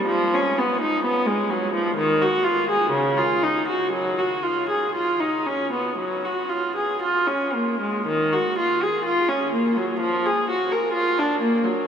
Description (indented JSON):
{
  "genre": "classical, baroque-style suite movement for unaccompanied viola",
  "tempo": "55-65 BPM",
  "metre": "4/4",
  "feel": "rubato",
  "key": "F# major, Eb minor from 8.1 s",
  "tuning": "A4 = 440 Hz",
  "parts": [
    { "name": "rich viola", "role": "solo", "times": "0.0-11.9 s", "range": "C#3 to Bb4", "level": "-20 LUFS", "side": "equal", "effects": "none" }
  ],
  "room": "wet huge ambient reverb, RT60 8.3 s",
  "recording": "in a vast, echoing space",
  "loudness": "-20 LUFS",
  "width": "side -8 dB against mid",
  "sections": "0.0-8.1 A section; 8.1-11.9 A section",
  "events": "none",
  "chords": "none",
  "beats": "| 0.07 1.04 1.98 2.93 | 3.92 4.94 5.97 7.00 | 8.07 9.07 10.02 10.96"
}